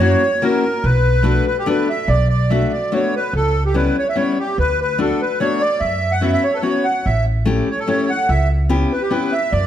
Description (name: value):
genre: musette waltz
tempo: 145 BPM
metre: 3/4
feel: straight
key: B minor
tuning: A4 = 441 Hz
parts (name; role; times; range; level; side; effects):
- accordion; melody; 0.0-9.7 s; G4 to F#5; -19 LUFS; right 1 dB; light tremolo tuning
- picked steel-string acoustic guitar; accompaniment; 0.0-9.3 s; G3 to G4; -20 LUFS; left 4 dB; none
- upright bass; bass; 0.0-9.7 s; A1 to F#2; -18 LUFS; right 1 dB; none
room: moderate recital hall reverb, RT60 1.4 s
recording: none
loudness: -15 LUFS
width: side -11 dB against mid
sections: 0.0-2.1 A section; 2.1-9.7 A section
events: none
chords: 0.0 F#7; 0.8 Bm7; 3.3 C#m7b5; 4.6 Bm7/D; 5.8 F#7sus4; 7.1 A7; 8.3 C#m7b5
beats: 0.01 0.42 | 0.83 1.25 1.66 | 2.08 2.50 2.92 | 3.33 3.74 4.16 | 4.57 4.98 5.39 | 5.80 6.22 6.63 | 7.05 7.47 7.88 | 8.29 8.71 9.12 | 9.53